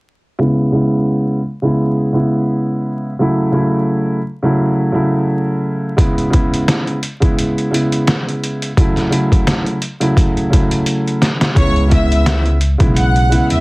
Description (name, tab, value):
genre	hip hop, boom-bap hip-hop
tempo	86 BPM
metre	4/4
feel	swing 56% on 16ths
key	C# minor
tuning	A4 = 440 Hz
part	dark concert grand piano	accompaniment	0.4-13.6 s	C#3 to E4	-15 LUFS	equal	low-pass filter
part	trip hop sampler-style drum kit	drums	6.0-13.6 s	hi-hat, kick drum, snare drum	-15 LUFS	equal	overdrive
part	warm studio violin section	melody	11.6-13.6 s	C#5 to F#6	-19 LUFS	equal	slapback echo
part	upright bass	bass	11.6-13.6 s	B1 to E2	-14 LUFS	equal	none
room	light reverb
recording	heavily compressed radio sound, multiband compression, vinyl crackle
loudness	-13 LUFS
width	side -23 dB against mid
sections	0.4-11.6 A section; 11.6-13.6 B section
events	filter sweep on grand piano 0.4-11.6; drum fill 10.9-11.6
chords	0.4 C#m7; 3.2 A6; 6.0 C#m7; 8.8 A6; 11.6 C#m7